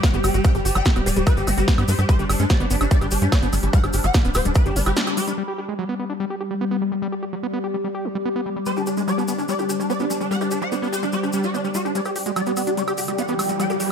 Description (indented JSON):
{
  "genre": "psychedelic trance",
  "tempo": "146 BPM",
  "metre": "4/4",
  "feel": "straight",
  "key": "unclear",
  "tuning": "A4 = 440 Hz",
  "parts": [
    { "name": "swarming rave lead", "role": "melody", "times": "0.0-5.3, 8.7-13.9 s", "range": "D4 to G5", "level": "-26 LUFS", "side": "equal", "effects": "chorus, phaser, vintage 12-bit sampler grit, sidechain pumping, digital delay" },
    { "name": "overtone-sweeping drone", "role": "sustained chords", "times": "0.0-13.9 s", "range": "G3", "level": "-29 LUFS", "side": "left 2 dB", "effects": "chorus, built-in reverb, phaser, sidechain pumping" },
    { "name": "overdriven acid bass", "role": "riff", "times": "0.0-13.8 s", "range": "F#3 to G4", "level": "-27 LUFS", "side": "moving between left 4 dB and right 4 dB", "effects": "distortion, auto-pan, sidechain pumping, digital delay" },
    { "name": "big-room dance drum kit", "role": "drums", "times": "0.0-5.4, 12.0-13.9 s", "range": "hi-hat, snare drum, woodblock", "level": "-27 LUFS", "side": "right 1 dB", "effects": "low-pass filter on hats, low-pass filter on perc, low-pass filter on snare, low-pass filter on room" },
    { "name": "electronic kick drum", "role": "drums", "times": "0.0-4.6 s", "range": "none", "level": "-19 LUFS", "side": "equal", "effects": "none" },
    { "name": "cabasa", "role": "percussion", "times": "0.0-5.4, 8.7-13.9 s", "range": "none", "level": "-34 LUFS", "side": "left 3 dB", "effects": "none" },
    { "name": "warbly tape-like pad", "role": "texture", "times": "0.0-13.9 s", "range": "G3 to G6", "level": "-29 LUFS", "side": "left 1 dB", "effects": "chorus, built-in reverb, sidechain pumping" },
    { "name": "tight sequencer bass", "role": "bass", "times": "0.1-4.9 s", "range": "D1 to G2", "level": "-22 LUFS", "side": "equal", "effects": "none" },
    { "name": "riser", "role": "sound effects", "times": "12.6-13.9 s", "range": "none", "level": "-31 LUFS", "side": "right 2 dB", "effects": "none" }
  ],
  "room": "light reverb",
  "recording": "none",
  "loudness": "-19 LUFS",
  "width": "side -7 dB against mid",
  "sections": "0.0-5.4 A section; 5.4-12.0 B section; 12.0-13.9 C section",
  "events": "break 5.0-5.4; band accent 5.0; build-up 12.0-13.9; filter sweep on digital synth lead 12.0-13.9; riser 12.6-13.9",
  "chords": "0.0 G5"
}